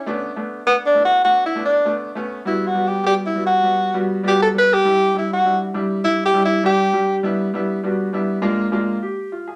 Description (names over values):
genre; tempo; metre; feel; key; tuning
soul; 101 BPM; 4/4; straight; unclear; A4 = 437 Hz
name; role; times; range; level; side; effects
breathy tenor saxophone; melody; 0.0-7.2 s; B3 to B4; -19 LUFS; equal; none
clear concert grand piano; accompaniment; 0.1-9.6 s; G3 to A4; -24 LUFS; equal; none
room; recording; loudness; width
wet studio reverb, RT60 0.5 s; none; -19 LUFS; mono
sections
0.0-7.2 A section; 7.2-9.6 B section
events
tenor saxophone solo 0.0-7.2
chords
0.1 Bm7; 2.5 Gmaj7; 4.8 Em7; 8.4 Bb7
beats
| 0.07 0.67 1.26 1.86 | 2.46 3.06 3.65 4.25 | 4.85 5.44 6.04 6.64 | 7.23 7.83 8.42 9.02